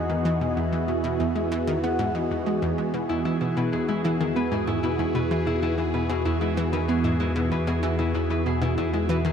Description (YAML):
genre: ambient, sequencer-driven space music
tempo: 95 BPM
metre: 4/4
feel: straight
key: E major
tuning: A4 = 440 Hz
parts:
  - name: soft octave-layered synth lead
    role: melody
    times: 0.0-3.1 s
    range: D#5 to F#5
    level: -33 LUFS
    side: equal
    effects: chorus, shimmer reverb, ping-pong delay
  - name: phased analog pad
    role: sustained chords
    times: 0.0-9.3 s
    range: E3 to G#4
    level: -26 LUFS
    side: right 1 dB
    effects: phaser, chorus, shimmer reverb
  - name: round analog bass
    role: bass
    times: 0.0-9.3 s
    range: E2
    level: -30 LUFS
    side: equal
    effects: none
  - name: analog pluck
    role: riff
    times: 0.1-9.3 s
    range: E2 to B3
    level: -28 LUFS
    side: left 1 dB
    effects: chorus, ping-pong delay
  - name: concert harp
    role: arpeggios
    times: 3.1-9.3 s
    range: E4 to B4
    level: -29 LUFS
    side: left 2 dB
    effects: auto-pan, shimmer reverb, ping-pong delay
room: wet huge ambient reverb, RT60 7.5 s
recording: none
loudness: -22 LUFS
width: side -7 dB against mid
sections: 0.0-9.3 A section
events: none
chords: 0.0 Eadd9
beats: | 0.57 1.20 1.83 2.46 | 3.09 3.73 4.36 4.99 | 5.62 6.25 6.88 7.51 | 8.15 8.78